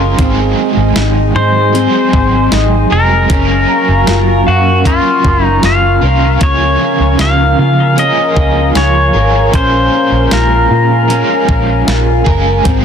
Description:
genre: dream pop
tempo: 77 BPM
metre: 4/4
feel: straight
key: unclear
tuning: A4 = 439 Hz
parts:
  - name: overdriven semi-hollow guitar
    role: accompaniment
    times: 0.0-12.8 s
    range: Ab2 to Ab4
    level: -17 LUFS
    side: right 4 dB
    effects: tremolo, analog chorus
  - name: warbly tape-like pad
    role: sustained chords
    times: 0.0-12.8 s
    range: Db4 to Eb6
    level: -18 LUFS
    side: equal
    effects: chorus, built-in reverb
  - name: mellow electric guitar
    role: arpeggios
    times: 0.0-12.8 s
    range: C4 to F5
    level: -17 LUFS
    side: left 5 dB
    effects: lush chorus, ping-pong delay
  - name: vintage muted fingered electric bass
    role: bass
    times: 0.0-12.8 s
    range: F1 to Db3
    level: -13 LUFS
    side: equal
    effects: none
  - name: celesta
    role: texture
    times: 0.0-9.9 s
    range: Ab5 to Db6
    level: -26 LUFS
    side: left 5 dB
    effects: none
  - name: clean 12-bit digital drum machine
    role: drums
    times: 0.2-12.8 s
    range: hi-hat, kick drum, snare drum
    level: -15 LUFS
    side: equal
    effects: none
  - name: pedal steel guitar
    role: melody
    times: 1.4-11.8 s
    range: F4 to F5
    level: -14 LUFS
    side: left 1 dB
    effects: ping-pong delay
room: light reverb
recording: dense, heavily limited modern master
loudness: -8 LUFS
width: side -7 dB against mid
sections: 0.0-12.8 A section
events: none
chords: 0.2 Ab7; 3.3 Gbmaj7; 6.4 Db6; 9.5 Bbm7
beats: | 0.18 0.96 1.74 2.52 | 3.30 4.08 4.86 5.64 | 6.42 7.20 7.97 8.75 | 9.53 10.31 11.09 11.87 | 12.65

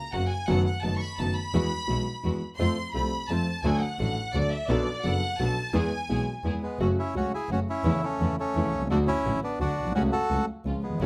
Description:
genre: tango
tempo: 171 BPM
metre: 3/4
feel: rubato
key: F# minor from 6.8 s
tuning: A4 = 438 Hz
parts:
  - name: rich studio violin section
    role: second line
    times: 0.0-6.4 s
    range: D5 to C#6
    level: -35 LUFS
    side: equal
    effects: none
  - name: dark concert grand piano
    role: accompaniment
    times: 0.1-11.1 s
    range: F#1 to A4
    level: -31 LUFS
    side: equal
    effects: none
  - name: rich chamber string section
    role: stabs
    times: 0.1-11.1 s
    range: G#3 to A4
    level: -39 LUFS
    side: equal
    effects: none
  - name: clear double bass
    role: bass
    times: 0.1-11.1 s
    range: F#1 to F2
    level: -33 LUFS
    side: equal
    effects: none
  - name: bandoneon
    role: melody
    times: 6.6-11.1 s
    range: G#3 to A4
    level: -31 LUFS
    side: equal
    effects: none
room: little or no reverb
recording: close, detailed microphones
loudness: -27 LUFS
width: mono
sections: 0.0-6.8 A section; 6.8-11.1 B section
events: violin section solo 0.0-6.8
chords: 0.5 B7/F#; 1.5 Eadd9; 2.6 F; 3.7 D; 4.7 Bm7; 5.7 E; 6.8 F#m; 7.9 A/E; 8.9 D; 10.0 F#m/C#; 10.7 C#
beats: 0.14 | 0.49 0.84 1.19 | 1.54 1.89 2.24 | 2.60 2.95 3.30 | 3.65 4.00 4.35 | 4.70 5.05 5.40 | 5.75 6.10 6.45 | 6.80 7.15 7.50 | 7.85 8.20 8.55 | 8.90 9.25 9.60 | 9.95 10.30 10.66 | 11.01

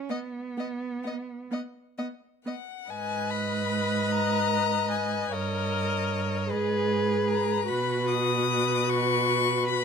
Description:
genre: classical, slow romantic movement for string quartet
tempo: 42-52 BPM (dotted quarters)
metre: 6/8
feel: rubato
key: G# minor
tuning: A4 = 440 Hz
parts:
  - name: rich cello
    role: bass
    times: 0.0-9.8 s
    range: G2 to C#4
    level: -31 LUFS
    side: right 6 dB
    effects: none
  - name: warm violin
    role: melody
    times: 0.1-9.8 s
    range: D#5 to D#6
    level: -30 LUFS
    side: left 10 dB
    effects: none
  - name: rich violin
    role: second line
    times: 0.1-9.8 s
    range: B4 to D#5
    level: -31 LUFS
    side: left 4 dB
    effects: none
  - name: rich viola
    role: accompaniment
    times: 0.1-9.8 s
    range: B3 to B4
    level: -30 LUFS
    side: right 1 dB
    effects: none
room: light reverb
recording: none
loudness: -25 LUFS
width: side -6 dB against mid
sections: 0.0-2.9 A section; 2.9-9.8 B section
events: none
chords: 0.1 B5; 2.9 G#m; 5.3 D#7/G; 6.5 G#m; 7.7 B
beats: | 0.10 1.52 | 2.91 4.13 | 5.33 6.51 | 7.69 8.89

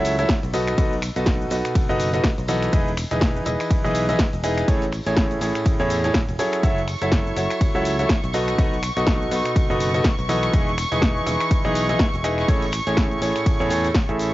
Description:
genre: piano house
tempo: 123 BPM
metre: 4/4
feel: swing 57% on 16ths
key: unclear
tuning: A4 = 440 Hz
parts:
  - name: clear concert grand piano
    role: riff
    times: 0.0-14.3 s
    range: A2 to E5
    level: -22 LUFS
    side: equal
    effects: sidechain pumping, tape echo
  - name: modern bright fingered electric bass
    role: bass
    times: 0.0-14.3 s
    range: E1 to E2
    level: -26 LUFS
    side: equal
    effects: tube saturation, sidechain pumping
  - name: punchy analog drum machine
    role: drums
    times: 0.0-14.3 s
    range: finger snaps, hi-hat, ride cymbal, shaker, snare drum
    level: -27 LUFS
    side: equal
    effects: overdrive, studio reverb, cassette tape
  - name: tambourine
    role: percussion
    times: 0.0-14.3 s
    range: none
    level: -40 LUFS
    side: left 3 dB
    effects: none
  - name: electronic kick drum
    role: drums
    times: 0.3-14.1 s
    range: none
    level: -21 LUFS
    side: equal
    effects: overdrive, studio reverb, cassette tape
  - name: warm studio violin section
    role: sustained chords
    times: 6.6-14.3 s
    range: C#6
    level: -28 LUFS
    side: equal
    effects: sidechain pumping
room: light reverb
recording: home recording on cassette, nothing above 7.6 kHz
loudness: -18 LUFS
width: side -16 dB against mid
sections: 0.0-14.3 A section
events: none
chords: 0.0 F#m7; 0.5 B7; 2.7 Emaj7; 4.7 Amaj7; 6.6 F#m7; 8.3 B7; 10.5 Emaj7; 12.5 Amaj7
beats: 0.29 | 0.78 1.27 1.75 2.24 | 2.73 3.22 3.71 4.19 | 4.68 5.17 5.66 6.14 | 6.63 7.12 7.61 8.10 | 8.58 9.07 9.56 10.05 | 10.54 11.02 11.51 12.00 | 12.49 12.97 13.46 13.95

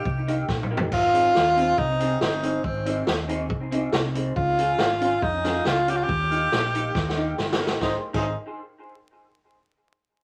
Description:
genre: ska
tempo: 139 BPM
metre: 4/4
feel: straight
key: Ab major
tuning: A4 = 442 Hz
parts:
  - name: edgy tenor saxophone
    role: melody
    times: 0.0-8.3 s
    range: C4 to G4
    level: -25 LUFS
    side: equal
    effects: none
  - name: hollow-body short-scale fingered electric bass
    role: bass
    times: 0.1-8.3 s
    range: G1 to F2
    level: -32 LUFS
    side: equal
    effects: none
  - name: swinging big-band drum kit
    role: drums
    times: 0.1-8.2 s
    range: crash cymbal, hi-hat, kick drum, snare drum, toms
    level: -29 LUFS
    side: equal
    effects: none
  - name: electric guitar through a small old amp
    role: accompaniment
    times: 0.3-8.3 s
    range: Bb3 to C5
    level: -32 LUFS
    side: equal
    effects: phaser, tape echo
room: wet studio ambience, RT60 0.5 s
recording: vinyl crackle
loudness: -24 LUFS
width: mono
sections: 0.9-7.8 A section; 7.8-9.5 B section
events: drum fill 0.5-0.9, 7.0-7.8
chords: 0.0 Eb; 0.9 Ab; 4.4 Db; 6.1 Eb; 7.8 Ab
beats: 0.06 0.49 | 0.92 1.35 1.78 2.21 | 2.64 3.07 3.50 3.93 | 4.36 4.79 5.22 5.66 | 6.09 6.52 6.95 7.38 | 7.81 8.24

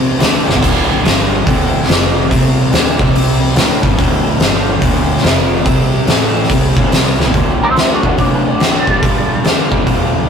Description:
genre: blues rock power trio and southern rock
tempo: 143 BPM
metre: 4/4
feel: swing 64% on 8ths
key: unclear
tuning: A4 = 438 Hz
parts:
  - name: raw garage guitar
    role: riff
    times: 0.0-10.3 s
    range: D2 to C4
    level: -16 LUFS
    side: equal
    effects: overdrive
  - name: upright bass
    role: bass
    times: 0.0-10.3 s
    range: D1 to G2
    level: -18 LUFS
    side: right 1 dB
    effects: none
  - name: oversized low-tuned drum kit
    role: drums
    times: 0.2-10.0 s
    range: crash cymbal, hi-hat, kick drum, snare drum, toms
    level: -13 LUFS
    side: equal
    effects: none
  - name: lightly driven lead guitar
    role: melody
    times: 7.6-9.7 s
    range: D4 to E5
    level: -17 LUFS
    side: right 1 dB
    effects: wah
room: moderate stone room reverb, RT60 1.3 s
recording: rough rehearsal-room recording, warm saturation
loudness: -10 LUFS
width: side -7 dB against mid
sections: 0.0-7.3 A section; 7.3-10.3 B section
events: drum fill 0.4, 7.1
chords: 0.2 D5; 1.0 G5; 1.5 D5; 1.9 F5; 2.3 C5; 2.7 D5; 2.9 C5; 3.6 D5; 4.4 G5; 4.8 D5; 5.2 F5; 5.7 C5; 6.1 A5; 6.5 D5; 8.8 G5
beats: 0.20 | 0.62 1.04 1.46 1.88 | 2.30 2.72 3.14 3.56 | 3.98 4.40 4.82 5.24 | 5.66 6.08 6.50 6.92 | 7.33 7.75 8.18 8.60 | 9.02 9.44 9.86 10.28

